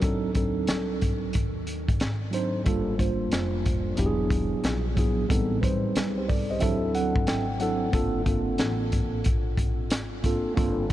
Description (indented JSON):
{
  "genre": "hip hop, jazz-hop",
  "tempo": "91 BPM",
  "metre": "4/4",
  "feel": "swing 66% on 16ths",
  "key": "unclear",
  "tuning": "A4 = 441 Hz",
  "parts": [
    { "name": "mellow tine electric piano", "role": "accompaniment", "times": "0.0-10.9 s", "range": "E3 to G5", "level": "-27 LUFS", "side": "right 1 dB", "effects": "medium stereo tremolo" },
    { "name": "upright bass", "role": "bass", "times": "0.0-10.9 s", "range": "E1 to Eb2", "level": "-32 LUFS", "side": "equal", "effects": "none" },
    { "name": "crunchy breakbeat drum kit", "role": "drums", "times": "0.0-10.9 s", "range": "hi-hat, kick drum, snare drum", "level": "-27 LUFS", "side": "equal", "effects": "vintage 12-bit sampler grit" }
  ],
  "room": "moderate huge ambient reverb, RT60 8.1 s",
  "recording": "dreamy mix soaked in reverb",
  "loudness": "-24 LUFS",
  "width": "side -13 dB against mid",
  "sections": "0.0-10.9 A section",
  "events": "tine electric piano fill 6.0-7.9",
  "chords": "0.0 D7b9; 2.7 Gm9; 4.0 E7; 5.3 Am7b5; 6.6 D7; 7.9 Gm11"
}